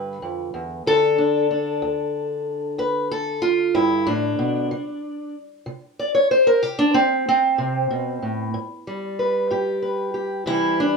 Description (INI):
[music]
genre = acoustic country blues, solo or duo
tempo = 62 BPM (dotted quarters)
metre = 12/8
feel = straight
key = G mixolydian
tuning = A4 = 440 Hz
[part]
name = fingerpicked steel-string acoustic guitar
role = solo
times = 0.0-11.0 s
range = D2 to D5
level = -19 LUFS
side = equal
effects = none
[sound]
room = wet studio reverb, RT60 0.6 s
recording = minimal, uncompressed stereo recording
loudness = -19 LUFS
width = side -4 dB against mid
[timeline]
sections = 0.0-11.0 A section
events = steel-string acoustic guitar solo 0.0-11.0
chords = 0.0 G; 0.9 D5; 4.7 Amadd11 (rootless); 8.5 G; 10.5 C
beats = | 0.86 1.82 2.78 3.75 | 4.71 5.67 6.63 7.59 | 8.55 9.51 10.46